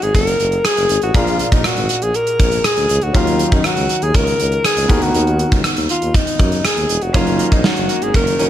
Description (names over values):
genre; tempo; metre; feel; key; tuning
1980s-style pop; 120 BPM; 4/4; straight; F# major; A4 = 440 Hz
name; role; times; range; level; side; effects
breathy alto saxophone; melody; 0.0-8.5 s; D#4 to A#4; -18 LUFS; left 1 dB; digital delay
warm baby grand piano; accompaniment; 0.0-8.5 s; A#2 to E#5; -23 LUFS; left 2 dB; none
warm tuba; bass; 0.0-8.5 s; E1 to F#2; -21 LUFS; equal; none
gated 80s drum kit; drums; 0.0-8.5 s; hi-hat, kick drum, rim click, snare drum; -16 LUFS; equal; none
direct-recorded clean electric guitar; riff; 7.1-8.5 s; D#3 to C#4; -23 LUFS; right 6 dB; lush chorus
room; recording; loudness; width
light reverb, small room ambience; none; -13 LUFS; side -11 dB against mid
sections
0.0-8.5 A section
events
none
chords
0.0 F#6; 1.1 A#7; 3.1 D#m7; 4.9 Bmaj7; 7.1 F#6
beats
0.14 0.64 | 1.14 1.64 2.14 2.64 | 3.14 3.64 4.14 4.64 | 5.14 5.64 6.14 6.64 | 7.14 7.64 8.14